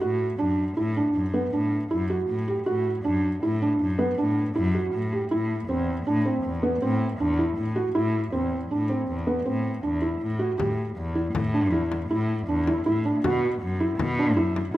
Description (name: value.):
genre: contemporary instrumental, chamber music in an uneven meter.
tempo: 159 BPM.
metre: 7/4.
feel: straight.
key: A dorian.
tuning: A4 = 440 Hz.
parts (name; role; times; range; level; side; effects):
felt-muted upright piano; arpeggios; 0.0-14.8 s; B3 to G4; -25 LUFS; right 1 dB; none.
rich cello; bass; 0.0-14.8 s; E2 to B2; -27 LUFS; left 1 dB; none.
frame drum; percussion; 10.6-14.7 s; none; -32 LUFS; left 4 dB; none.
room: moderate recital hall reverb, RT60 1.9 s.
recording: none.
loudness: -23 LUFS.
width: side -15 dB against mid.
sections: 0.0-10.6 A section; 10.6-14.8 B section.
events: none.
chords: 0.0 Bm7 (rootless); 5.3 Am; 10.6 A5; 13.2 B5.